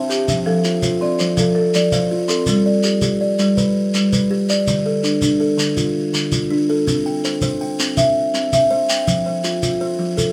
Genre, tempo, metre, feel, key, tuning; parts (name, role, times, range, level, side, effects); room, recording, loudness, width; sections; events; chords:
southern african traditional, mbira-style interlocking cycle; 109 BPM (dotted quarters); 12/8; straight; G mixolydian; A4 = 444 Hz
buzzing kalimba; arpeggios; 0.0-10.3 s; D3 to G5; -19 LUFS; equal
buzzing marimba with medium hard mallets; arpeggios; 0.0-2.8 s; F3 to E5; -24 LUFS; equal
shekere; percussion; 0.1-10.3 s; -24 LUFS; equal
wet studio reverb, RT60 0.5 s; band playing live in one room; -18 LUFS; mono
0.0-2.5 A section; 2.5-10.3 B section
0.3 F; 2.5 G; 4.7 Dm; 6.9 C; 9.1 F